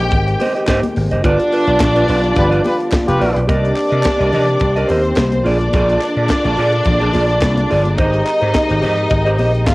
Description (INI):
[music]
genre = disco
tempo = 107 BPM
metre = 4/4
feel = straight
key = C minor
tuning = A4 = 440 Hz
[part]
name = clear studio string section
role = second line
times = 0.0-9.7 s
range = C4 to G5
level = -18 LUFS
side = equal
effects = cassette tape
[part]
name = mellow electric guitar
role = accompaniment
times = 0.0-9.6 s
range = F4 to Eb5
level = -20 LUFS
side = right 2 dB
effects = cassette tape
[part]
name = dark French horn section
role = sustained chords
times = 0.0-9.7 s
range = D3 to G4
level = -21 LUFS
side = equal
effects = cassette tape
[part]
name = vintage slap bass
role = bass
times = 0.0-9.7 s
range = F1 to C3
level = -18 LUFS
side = equal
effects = transformer saturation
[part]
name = tight funk drum kit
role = drums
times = 0.1-9.7 s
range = hi-hat, kick drum, snare drum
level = -20 LUFS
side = equal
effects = cassette tape
[part]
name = congas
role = percussion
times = 0.1-9.7 s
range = none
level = -25 LUFS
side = left 2 dB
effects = none
[part]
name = group handclap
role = percussion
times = 0.7-9.7 s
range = none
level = -29 LUFS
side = left 1 dB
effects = none
[part]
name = warm horn section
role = stabs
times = 2.4-3.4 s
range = F4 to B4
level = -20 LUFS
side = left 1 dB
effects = cassette tape
[sound]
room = studio reverb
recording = home recording on cassette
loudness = -12 LUFS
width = side -21 dB against mid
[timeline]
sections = 0.0-3.5 A section; 3.5-9.7 B section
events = band accent 1.2-3.5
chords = 0.0 Abmaj7; 1.2 G7; 3.5 Cm7; 5.5 Bb7; 8.0 Abmaj7